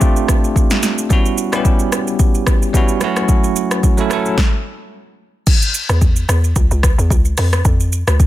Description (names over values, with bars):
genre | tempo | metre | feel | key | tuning
amapiano | 110 BPM | 4/4 | swing 55% on 16ths | unclear | A4 = 440 Hz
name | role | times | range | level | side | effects
barky tine electric piano | accompaniment | 0.0-4.4 s | F#3 to A4 | -18 LUFS | right 1 dB | auto-pan
deep house drum kit | drums | 0.0-8.3 s | crash cymbal, hi-hat, kick drum, rim click, shaker, snare drum | -14 LUFS | equal | overdrive
hollow log drum bass | bass | 5.9-8.3 s | C#2 to F2 | -15 LUFS | equal | none
room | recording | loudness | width
digital ambience | dense, heavily limited modern master | -13 LUFS | side -14 dB against mid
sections
0.0-5.5 A section; 5.5-8.3 B section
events
stop 4.4-5.5; drop 5.5-8.3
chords
0.0 F6; 1.1 Em69; 3.0 F#m7; 4.9 N.C.; 5.5 C#m; 7.4 F5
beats
0.01 0.56 | 1.10 1.65 2.20 2.74 | 3.29 3.83 4.38 4.92 | 5.47 6.01 6.56 7.11 | 7.65 8.20